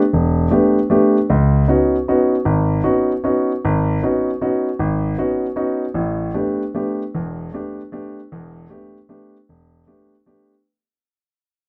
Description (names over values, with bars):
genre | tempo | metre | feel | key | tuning
jazz | 154 BPM | 3/4 | swing 66% on 8ths | unclear | A4 = 442 Hz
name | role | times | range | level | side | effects
warm concert grand piano | solo | 0.1-10.5 s | E1 to G4 | -19 LUFS | equal | none
room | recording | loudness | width
light reverb | close, detailed microphones | -18 LUFS | mono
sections
0.0-10.7 A section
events
fade-out 1.3-10.7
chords
0.0 A9sus4; 1.3 Db9sus4; 6.0 A9sus4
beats
| 0.12 0.51 0.90 | 1.29 1.68 2.07 | 2.46 2.85 3.24 | 3.63 4.02 4.41 | 4.80 5.19 5.58 | 5.97 6.36 6.75 | 7.14 7.53 7.92 | 8.31 8.70 9.09 | 9.48 9.87 10.26